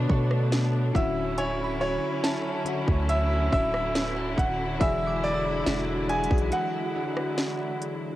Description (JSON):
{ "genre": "contemporary R&B", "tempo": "70 BPM", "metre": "4/4", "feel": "straight", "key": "unclear", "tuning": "A4 = 440 Hz", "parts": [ { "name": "FM electric piano", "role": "accompaniment", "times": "0.0-8.2 s", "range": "B2 to C#5", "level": "-33 LUFS", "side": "left 7 dB", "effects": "chorus, phaser, cassette tape" }, { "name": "rich studio string section", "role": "sustained chords", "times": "0.0-8.2 s", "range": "D3 to E4", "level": "-31 LUFS", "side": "equal", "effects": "cassette tape" }, { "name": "direct-recorded clean electric guitar", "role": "arpeggios", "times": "0.0-8.2 s", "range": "D3 to C#5", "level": "-38 LUFS", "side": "right 8 dB", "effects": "ensemble chorus, cassette tape, tape echo" }, { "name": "long sustained 808-style bass", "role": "bass", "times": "0.0-6.5 s", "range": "D1 to B2", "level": "-28 LUFS", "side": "equal", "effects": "tube saturation" }, { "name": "glassy synth bell", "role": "texture", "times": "0.0-7.0 s", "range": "G#5 to E6", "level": "-39 LUFS", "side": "right 1 dB", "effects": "chorus, cassette tape, tape echo" }, { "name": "trap drum kit", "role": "drums", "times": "0.1-8.0 s", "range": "hi-hat, kick drum, rim click, snare drum", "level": "-27 LUFS", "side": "equal", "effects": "cassette tape" }, { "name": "bright grand piano", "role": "melody", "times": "1.0-7.8 s", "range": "C#5 to G#5", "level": "-29 LUFS", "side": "right 1 dB", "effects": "cassette tape" } ], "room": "little or no reverb", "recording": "home recording on cassette", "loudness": "-24 LUFS", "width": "side -15 dB against mid", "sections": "0.0-8.2 A section", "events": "break 6.5-8.2", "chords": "0.0 Bm9; 0.9 Dmaj9; 4.8 E9" }